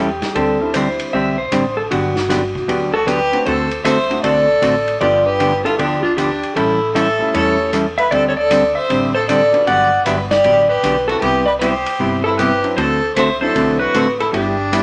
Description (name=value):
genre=country, western swing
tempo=155 BPM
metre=4/4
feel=swing 65% on 8ths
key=G major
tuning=A4 = 440 Hz
part: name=clean lap steel guitar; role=melody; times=0.0-14.8 s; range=F4 to F#5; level=-20 LUFS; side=equal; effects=none
part: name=hollow-body jazz guitar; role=accompaniment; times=0.0-14.8 s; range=C3 to A4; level=-22 LUFS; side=equal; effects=none
part: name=upright bass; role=bass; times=0.0-14.8 s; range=E1 to E2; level=-32 LUFS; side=equal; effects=none
part: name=vintage drum kit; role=drums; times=0.2-14.8 s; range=hi-hat, kick drum, ride cymbal, snare drum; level=-30 LUFS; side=equal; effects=none
part: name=warm upright piano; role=accompaniment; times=0.6-13.9 s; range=F#3 to F#4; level=-27 LUFS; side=equal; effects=none
part: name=clear fiddle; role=second line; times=2.9-14.8 s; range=D4 to D5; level=-22 LUFS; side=equal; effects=none
room=moderate studio reverb, RT60 0.9 s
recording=nothing above 10.3 kHz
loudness=-16 LUFS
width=mono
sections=0.0-14.8 A section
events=none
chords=0.4 D9sus4; 1.9 Gmaj7; 3.5 D7; 5.0 G7; 6.6 A7; 8.1 D9sus4; 9.7 Gmaj7; 11.2 Cmaj7; 12.8 D9; 14.3 G6